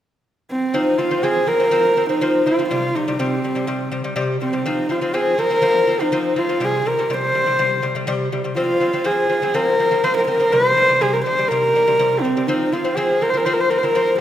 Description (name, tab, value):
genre	mongolian traditional, Mongolian folk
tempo	123 BPM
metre	4/4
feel	straight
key	F minor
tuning	A4 = 437 Hz
part	warm horsehead fiddle	melody	0.5-14.2 s	C4 to C5	-18 LUFS	equal	none
part	lute	arpeggios	0.7-14.2 s	C3 to C4	-21 LUFS	left 2 dB	none
room	moderate scoring stage reverb, RT60 2.0 s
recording	none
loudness	-16 LUFS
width	side -11 dB against mid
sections	0.7-14.2 A section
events	none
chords	0.0 N.C.; 0.7 F5; 2.7 C5; 4.7 F5; 6.6 C5; 8.6 F5; 10.5 C5; 12.5 F5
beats	0.26 | 0.74 1.23 1.72 2.21 | 2.70 3.19 3.68 4.17 | 4.66 5.15 5.64 6.12 | 6.61 7.10 7.59 8.08 | 8.57 9.06 9.55 10.04 | 10.53 11.02 11.51 12.00 | 12.49 12.97 13.46 13.95